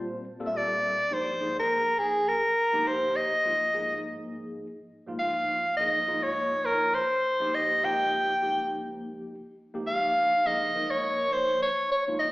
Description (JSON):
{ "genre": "jazz", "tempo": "103 BPM", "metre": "4/4", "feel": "swing 55% on 16ths", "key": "Ab major", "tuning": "A4 = 439 Hz", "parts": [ { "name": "tine electric piano", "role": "accompaniment", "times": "0.0-12.3 s", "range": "Db2 to C5", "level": "-36 LUFS", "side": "equal", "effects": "medium stereo tremolo, phaser, plate reverb, slapback echo" }, { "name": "clear soprano saxophone", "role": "melody", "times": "0.5-12.3 s", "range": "Ab4 to G5", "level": "-24 LUFS", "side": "equal", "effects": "slapback echo, plate reverb" } ], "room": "moderate club reverb, RT60 0.5 s", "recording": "live gig heard through the venue's PA, recital hall reverb, AM radio sound", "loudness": "-24 LUFS", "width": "side -19 dB against mid", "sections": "0.0-1.1 A section; 1.1-12.3 B section", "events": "soprano saxophone solo 0.0-1.1", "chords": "0.0 Bbmaj9; 1.1 Abmaj9; 7.8 Dbadd9", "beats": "0.54 | 1.12 1.70 2.28 2.87 | 3.45 4.03 4.62 5.20 | 5.78 6.37 6.95 7.54 | 8.12 8.71 9.29 9.88 | 10.46 11.05 11.63 12.22" }